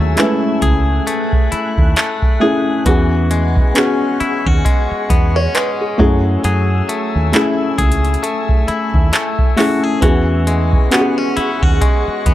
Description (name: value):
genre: contemporary R&B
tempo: 67 BPM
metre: 4/4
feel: swing 58% on 16ths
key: unclear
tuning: A4 = 440 Hz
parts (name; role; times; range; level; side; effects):
- felt-muted upright piano; accompaniment; 0.0-12.3 s; G#3 to C#5; -18 LUFS; left 1 dB; none
- glassy FM pad; sustained chords; 0.0-12.3 s; A3 to F#6; -24 LUFS; equal; ensemble chorus, built-in reverb
- direct-recorded clean electric guitar; arpeggios; 0.0-12.3 s; E3 to G#4; -20 LUFS; left 4 dB; tape echo
- deep dub fingered electric bass; bass; 0.0-12.3 s; C#2 to F#2; -16 LUFS; right 1 dB; none
- booming analog drum machine; drums; 0.2-12.3 s; handclaps, hi-hat, kick drum; -15 LUFS; right 1 dB; none
room: digital ambience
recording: dry, gritty hardware recording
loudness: -12 LUFS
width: side -14 dB against mid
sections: 0.0-12.3 A section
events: none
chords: 0.0 F#m9; 2.9 E69; 6.0 F#m9; 10.0 E69